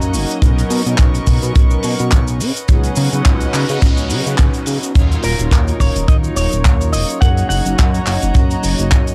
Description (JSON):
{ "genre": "nu-disco, nu disco", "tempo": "106 BPM", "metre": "4/4", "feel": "swing 56% on 16ths", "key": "Eb minor", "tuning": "A4 = 440 Hz", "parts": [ { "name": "mellow synth brass", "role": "accompaniment", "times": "0.0-9.1 s", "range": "Gb3 to A#4", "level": "-26 LUFS", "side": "equal", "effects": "chorus, sidechain pumping, tape echo" }, { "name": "dark studio string section", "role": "sustained chords", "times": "0.0-9.1 s", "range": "B3 to C#6", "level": "-29 LUFS", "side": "equal", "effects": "sidechain pumping" }, { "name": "chorused synth bass", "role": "bass", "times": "0.0-9.1 s", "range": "Eb1 to Db3", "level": "-20 LUFS", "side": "equal", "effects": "tube saturation, sidechain pumping" }, { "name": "tight funk drum kit", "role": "drums", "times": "0.0-9.1 s", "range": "cabasa, crash cymbal, handclaps, hi-hat", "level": "-25 LUFS", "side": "equal", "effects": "none" }, { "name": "egg shaker", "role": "percussion", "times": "0.0-9.1 s", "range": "none", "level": "-39 LUFS", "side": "equal", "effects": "none" }, { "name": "kick drum", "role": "drums", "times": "0.4-9.0 s", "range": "none", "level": "-15 LUFS", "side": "equal", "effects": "none" }, { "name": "noise sweep", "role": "sound effects", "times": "3.3-5.0 s", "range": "none", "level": "-33 LUFS", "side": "equal", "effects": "none" }, { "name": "electric guitar with an envelope filter", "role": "melody", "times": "5.2-8.6 s", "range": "Bb4 to Gb5", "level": "-26 LUFS", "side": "equal", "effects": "vintage 12-bit sampler grit, analog delay" } ], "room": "studio reverb", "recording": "dry, gritty hardware recording", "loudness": "-15 LUFS", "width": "mono", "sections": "0.0-9.1 A section", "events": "noise sweep 3.3-5.0", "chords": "0.4 Bmaj9; 2.4 Db9sus4; 5.0 Ebm7; 7.2 Gb6" }